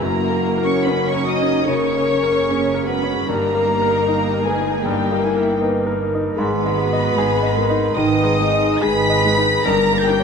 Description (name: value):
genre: classical, romantic movement for piano and orchestra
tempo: 75 BPM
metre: 4/4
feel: uneven beats, rubato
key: G# minor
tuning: A4 = 439 Hz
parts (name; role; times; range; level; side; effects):
- clear concert grand piano; melody; 0.0-10.2 s; F#2 to D#5; -21 LUFS; equal; none
- dark chamber violin section; melody; 0.0-10.2 s; E5 to B6; -24 LUFS; left 2 dB; none
- warm studio violin section; second line; 0.0-10.2 s; G4 to B5; -24 LUFS; left 2 dB; none
- dark studio viola section; accompaniment; 0.0-10.2 s; G3 to E4; -28 LUFS; right 1 dB; none
- mellow French horn section; sustained chords; 0.0-10.2 s; F#4 to B4; -23 LUFS; left 5 dB; none
- rich studio double bass section; bass; 0.0-10.2 s; F#1 to G#1; -26 LUFS; right 4 dB; none
- warm studio cello section; bass; 0.0-10.2 s; G3 to B4; -26 LUFS; right 3 dB; none
room: wet scoring stage reverb, RT60 2.0 s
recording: minimal, uncompressed stereo recording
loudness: -16 LUFS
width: side -6 dB against mid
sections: 0.0-10.2 A section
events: none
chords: 0.0 F#; 3.3 D#/G; 6.4 G#m; 9.7 D#7/G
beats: | 0.01 0.85 1.67 2.47 | 3.27 4.06 4.83 5.60 | 6.38 7.17 7.96 8.83 | 9.66